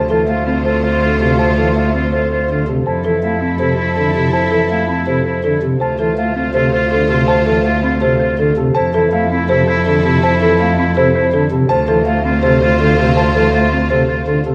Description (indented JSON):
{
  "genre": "classical, minimalist pattern music",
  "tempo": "163 BPM",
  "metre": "4/4",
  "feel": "straight",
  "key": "unclear",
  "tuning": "A4 = 440 Hz",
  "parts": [
    { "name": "dark baby grand piano", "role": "melody", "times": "0.0-14.5 s", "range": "A4 to A5", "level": "-25 LUFS", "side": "equal", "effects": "none" },
    { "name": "clear oboe", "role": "second line", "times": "0.0-14.4 s", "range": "E4 to F4", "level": "-24 LUFS", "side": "equal", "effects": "none" },
    { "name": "rich studio string section", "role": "sustained chords", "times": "0.0-14.4 s", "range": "E4 to C5", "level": "-25 LUFS", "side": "equal", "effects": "none" },
    { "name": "folk marimba with medium mallets", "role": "arpeggios", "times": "0.0-14.5 s", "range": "C4 to C5", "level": "-20 LUFS", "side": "equal", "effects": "none" },
    { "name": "rich cello", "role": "bass", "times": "0.0-14.5 s", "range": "D2 to F2", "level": "-20 LUFS", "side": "equal", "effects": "none" },
    { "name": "pipe organ, flutes", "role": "accompaniment", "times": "0.1-14.5 s", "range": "C3 to A3", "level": "-22 LUFS", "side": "equal", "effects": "none" }
  ],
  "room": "moderate scoring stage reverb, RT60 2.0 s",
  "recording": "none",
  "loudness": "-14 LUFS",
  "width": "mono",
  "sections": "0.0-14.5 A section",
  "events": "none",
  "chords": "0.0 Dm7; 2.9 Fmaj7; 5.8 Dm7; 8.8 Fmaj7; 11.7 Dm7"
}